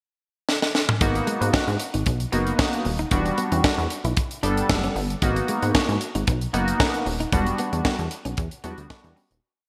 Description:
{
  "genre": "early-eighties boogie funk",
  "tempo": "114 BPM",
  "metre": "4/4",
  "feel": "straight",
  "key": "G# minor",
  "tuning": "A4 = 440 Hz",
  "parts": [
    { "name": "tight funk drum kit", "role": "drums", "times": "0.5-9.4 s", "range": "hi-hat, kick drum, snare drum, toms", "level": "-26 LUFS", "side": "equal", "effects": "gated reverb" },
    { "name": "chorused polysynth", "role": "accompaniment", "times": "1.0-9.2 s", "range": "F#3 to A4", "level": "-28 LUFS", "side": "equal", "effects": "none" },
    { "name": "plucky analog bass", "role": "bass", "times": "1.0-9.4 s", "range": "D#1 to G#2", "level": "-28 LUFS", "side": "equal", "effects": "none" },
    { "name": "clean electric guitar", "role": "riff", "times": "1.2-9.3 s", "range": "G#3 to E4", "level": "-35 LUFS", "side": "equal", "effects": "none" }
  ],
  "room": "moderate lush hall reverb, RT60 2.0 s, studio reverb",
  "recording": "bright 1980s-style digital production",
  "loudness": "-23 LUFS",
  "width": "mono",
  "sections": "0.0-1.0 pickup bar; 1.0-9.4 verse",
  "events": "drum fill 0.5-1.0; fade-out 7.3-9.4",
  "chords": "0.0 N.C.; 1.0 G#m9; 3.1 Em9; 5.2 G#m9; 7.3 Em9",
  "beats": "0.48 | 1.01 1.54 2.06 2.59 | 3.12 3.64 4.17 4.70 | 5.22 5.75 6.27 6.80 | 7.33 7.85 8.38 8.91"
}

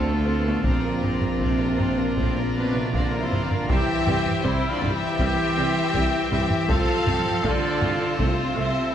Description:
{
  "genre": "cinematic, epic orchestral film score",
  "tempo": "80 BPM",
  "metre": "4/4",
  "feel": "straight",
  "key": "unclear",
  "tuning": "A4 = 440 Hz",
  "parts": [
    { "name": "rich studio violin section", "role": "melody", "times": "0.0-8.9 s", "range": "B4 to F5", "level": "-31 LUFS", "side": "left 4 dB", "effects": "none" },
    { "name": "warm symphonic violin section", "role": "second line", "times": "0.0-8.9 s", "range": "E4 to C5", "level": "-32 LUFS", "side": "left 3 dB", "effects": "none" },
    { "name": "rich symphonic viola section", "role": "accompaniment", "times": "0.0-8.6 s", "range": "G3 to C4", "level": "-32 LUFS", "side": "right 2 dB", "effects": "none" },
    { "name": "mellow French horn section", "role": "sustained chords", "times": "0.0-8.9 s", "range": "A3 to F4", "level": "-28 LUFS", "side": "left 2 dB", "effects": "none" },
    { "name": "pipe organ, trumpet", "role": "sustained chords", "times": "0.0-8.9 s", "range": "C4 to Bb5", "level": "-31 LUFS", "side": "left 1 dB", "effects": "none" },
    { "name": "clear studio double bass section", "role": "bass", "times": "0.0-8.6 s", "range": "Bb1 to D2", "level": "-32 LUFS", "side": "right 2 dB", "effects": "none" },
    { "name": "clear symphonic cello section", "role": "bass", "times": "0.0-8.9 s", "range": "A2 to F3", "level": "-30 LUFS", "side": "right 2 dB", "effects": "none" },
    { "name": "mellow tuba", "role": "bass", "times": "0.0-8.7 s", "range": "Bb1 to D2", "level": "-31 LUFS", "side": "right 3 dB", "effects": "none" },
    { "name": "taiko ensemble", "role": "drums", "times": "0.6-8.9 s", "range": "none", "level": "-27 LUFS", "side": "equal", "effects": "none" },
    { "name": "clear trumpet section", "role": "stabs", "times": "2.6-8.9 s", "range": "D4 to E5", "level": "-29 LUFS", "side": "right 1 dB", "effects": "none" }
  ],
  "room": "wet concert hall reverb, RT60 2.2 s",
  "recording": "nothing above 10.9 kHz",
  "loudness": "-20 LUFS",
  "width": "side -9 dB against mid",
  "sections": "0.0-3.7 A section; 3.7-8.9 B section",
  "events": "none",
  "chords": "0.0 Dm7; 0.6 Bbadd9; 3.7 C; 6.7 F/C",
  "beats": "| 0.64 1.41 2.17 2.94 | 3.69 4.45 5.19 5.94 | 6.69 7.44 8.19 8.94"
}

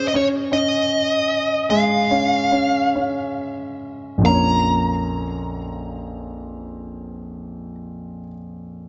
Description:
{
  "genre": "six-eight pop ballad",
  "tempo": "44-53 BPM (dotted quarters)",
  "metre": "6/8",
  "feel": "straight",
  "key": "Bb minor",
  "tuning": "A4 = 440 Hz",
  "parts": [
    { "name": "dark smooth lead guitar", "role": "melody", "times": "0.0-7.8 s", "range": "Db5 to Bb5", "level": "-22 LUFS", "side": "equal", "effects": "overdrive, tape echo" },
    { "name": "warm grand piano", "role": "accompaniment", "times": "0.0-8.9 s", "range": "Bb1 to Db5", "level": "-25 LUFS", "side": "equal", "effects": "none" }
  ],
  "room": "light reverb, small room ambience",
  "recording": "nothing above 7.8 kHz",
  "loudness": "-20 LUFS",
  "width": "mono",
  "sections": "0.0-4.3 A section; 4.3-7.0 B section",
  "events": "slowing down 0.0-4.3",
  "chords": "0.0 Db; 4.3 Bbm",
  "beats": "0.51 | 1.69 2.93 | 4.26 5.62"
}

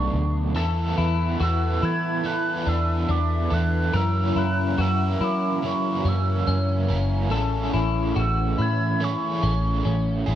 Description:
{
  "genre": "dream pop",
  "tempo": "71 BPM",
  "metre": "4/4",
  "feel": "straight",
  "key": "unclear",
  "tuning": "A4 = 445 Hz",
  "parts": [
    { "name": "hollow clarinet-like synth lead", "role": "melody", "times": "0.0-10.3 s", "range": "C#6 to G#6", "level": "-29 LUFS", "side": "right 4 dB", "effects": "chorus, tremolo, digital delay" },
    { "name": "crunchy overdriven guitar", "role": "accompaniment", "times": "0.0-10.4 s", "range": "F#2 to A#4", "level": "-30 LUFS", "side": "right 6 dB", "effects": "tremolo, wide subtle chorus" },
    { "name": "phased analog pad", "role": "sustained chords", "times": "0.0-10.4 s", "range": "E3 to B4", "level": "-28 LUFS", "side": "equal", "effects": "phaser, chorus" },
    { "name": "clean electric guitar", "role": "arpeggios", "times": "0.0-10.4 s", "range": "C#4 to A#4", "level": "-30 LUFS", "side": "left 7 dB", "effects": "analog chorus, digital delay" },
    { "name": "vintage muted picked electric bass", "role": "bass", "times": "0.0-10.4 s", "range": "F#1 to F#3", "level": "-24 LUFS", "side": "equal", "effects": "none" }
  ],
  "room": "light reverb",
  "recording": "dark, warm production",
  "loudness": "-21 LUFS",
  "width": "side -11 dB against mid",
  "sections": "0.0-10.4 A section",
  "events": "none",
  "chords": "0.0 Bm7; 0.6 Esus4; 3.9 F#7; 7.3 Amaj7",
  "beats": "| 0.56 1.41 2.25 3.10 | 3.94 4.79 5.63 6.48 | 7.32 8.17 9.01 9.86"
}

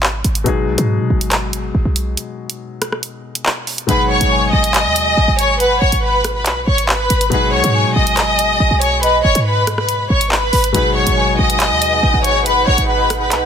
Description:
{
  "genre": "hip hop, drill",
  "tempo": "140 BPM",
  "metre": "4/4",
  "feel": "half-time",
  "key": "G# minor",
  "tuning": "A4 = 441 Hz",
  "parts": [
    { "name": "warm concert grand piano", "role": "accompaniment", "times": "0.0-13.5 s", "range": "B2 to G#4", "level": "-24 LUFS", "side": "left 6 dB", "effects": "none" },
    { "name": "short 808-style bass", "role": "bass", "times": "0.0-13.5 s", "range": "F#1 to B2", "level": "-18 LUFS", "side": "right 1 dB", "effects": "none" },
    { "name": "drill drum kit", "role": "drums", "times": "0.0-13.4 s", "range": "handclaps, hi-hat, rim click", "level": "-18 LUFS", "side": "right 1 dB", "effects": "none" },
    { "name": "warm studio violin section", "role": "melody", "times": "3.9-13.5 s", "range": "B4 to D#6", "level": "-15 LUFS", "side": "left 2 dB", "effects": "none" },
    { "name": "hollow clarinet-like synth lead", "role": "second line", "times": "3.9-12.9 s", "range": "D#5 to G#5", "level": "-22 LUFS", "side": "right 6 dB", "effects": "chorus, digital delay" },
    { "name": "mellow large flute ensemble", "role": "sustained chords", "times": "10.7-13.5 s", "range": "D#4 to F#5", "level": "-23 LUFS", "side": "right 2 dB", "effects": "none" }
  ],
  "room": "light reverb, studio ambience",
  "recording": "dense, heavily limited modern master",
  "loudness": "-13 LUFS",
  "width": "side -8 dB against mid",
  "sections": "0.0-3.9 A section; 3.9-13.5 B section",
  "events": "break 0.0-3.9",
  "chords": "0.0 G#m7",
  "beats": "0.03 | 0.46 0.89 1.32 1.75 | 2.17 2.60 3.03 3.46 | 3.89 4.32 4.75 5.17 | 5.60 6.03 6.46 6.89 | 7.32 7.75 8.17 8.60 | 9.03 9.46 9.89 10.32 | 10.75 11.17 11.60 12.03 | 12.46 12.89 13.32"
}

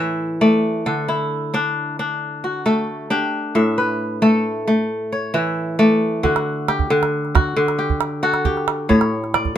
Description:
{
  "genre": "west african traditional, West African string and xylophone music",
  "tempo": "90 BPM (dotted quarters)",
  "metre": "12/8",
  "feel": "straight",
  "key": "D major",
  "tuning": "A4 = 441 Hz",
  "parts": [
    { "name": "kora", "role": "arpeggios", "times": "0.0-9.6 s", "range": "A2 to E5", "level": "-17 LUFS", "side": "left 1 dB", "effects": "none" },
    { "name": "calabash", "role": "percussion", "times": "6.2-9.6 s", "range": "none", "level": "-20 LUFS", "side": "right 6 dB", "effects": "none" }
  ],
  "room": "light reverb",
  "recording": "minimal, uncompressed stereo recording",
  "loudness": "-17 LUFS",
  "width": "side -10 dB against mid",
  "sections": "0.0-6.2 A section; 6.2-9.6 B section",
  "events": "none",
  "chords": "0.0 A; 0.9 D; 3.5 A; 6.2 D; 8.9 A",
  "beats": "0.18 | 0.86 1.53 2.20 2.88 | 3.55 4.22 4.89 5.56 | 6.23 6.90 7.57 8.23 | 8.90 9.57"
}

